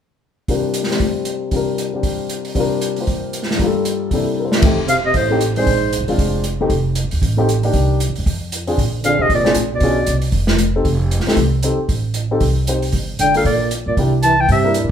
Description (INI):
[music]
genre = jazz, small-group swing and bop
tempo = 231 BPM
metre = 4/4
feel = swing 58% on 8ths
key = F mixolydian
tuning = A4 = 439 Hz
[part]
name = warm upright piano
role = accompaniment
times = 0.5-14.9 s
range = G2 to E5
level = -20 LUFS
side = left 3 dB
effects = none
[part]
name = open jazz drum kit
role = drums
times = 0.5-14.8 s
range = hi-hat, kick drum, ride cymbal, snare drum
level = -20 LUFS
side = equal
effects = none
[part]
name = upright bass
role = bass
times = 4.6-14.9 s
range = F1 to Bb2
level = -19 LUFS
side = right 1 dB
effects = none
[part]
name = warm clarinet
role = melody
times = 4.9-6.0, 9.1-10.2, 13.2-14.7 s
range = C5 to A5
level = -17 LUFS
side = left 1 dB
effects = none
[part]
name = breathy trombone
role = second line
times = 4.9-6.1, 9.0-10.2, 13.2-14.7 s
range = Ab2 to E3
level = -21 LUFS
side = right 5 dB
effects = none
[sound]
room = moderate large studio reverb, RT60 0.8 s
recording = band playing live in one room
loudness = -15 LUFS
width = side -8 dB against mid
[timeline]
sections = 0.5-4.6 A section; 4.6-14.9 B section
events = drum fill 4.4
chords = 0.5 C7sus4; 3.6 Gm7; 4.1 C13; 4.6 F9; 5.7 Bb9; 6.7 F9; 7.7 Cm7; 8.3 F5; 8.8 Bb9; 9.8 Bdim7; 10.9 F9; 12.9 Gm; 14.0 C9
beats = | 0.48 0.74 1.00 1.26 | 1.52 1.78 2.04 2.30 | 2.56 2.82 3.08 3.33 | 3.59 3.85 4.11 4.37 | 4.63 4.89 5.15 5.41 | 5.67 5.93 6.18 6.44 | 6.70 6.96 7.22 7.48 | 7.74 8.00 8.26 8.52 | 8.78 9.04 9.30 9.56 | 9.81 10.07 10.33 10.59 | 10.85 11.11 11.37 11.63 | 11.89 12.15 12.41 12.67 | 12.93 13.19 13.45 13.71 | 13.97 14.23 14.49 14.75